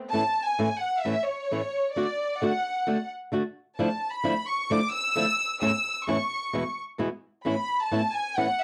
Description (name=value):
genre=tango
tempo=131 BPM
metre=4/4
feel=rubato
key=A major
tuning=A4 = 440 Hz
part: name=warm studio violin section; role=second line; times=0.1-8.6 s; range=C#5 to E6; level=-29 LUFS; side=equal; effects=cassette tape
part: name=flamenco guitar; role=accompaniment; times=0.1-8.5 s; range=E2 to F#4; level=-29 LUFS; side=equal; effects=cassette tape
room=moderate studio reverb, RT60 0.6 s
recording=home recording on cassette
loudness=-28 LUFS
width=mono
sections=0.1-8.6 A section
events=violin section solo 0.1-8.6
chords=0.1 A; 2.0 D; 3.8 Dmadd9; 5.6 A/E; 6.5 E; 7.4 Aadd9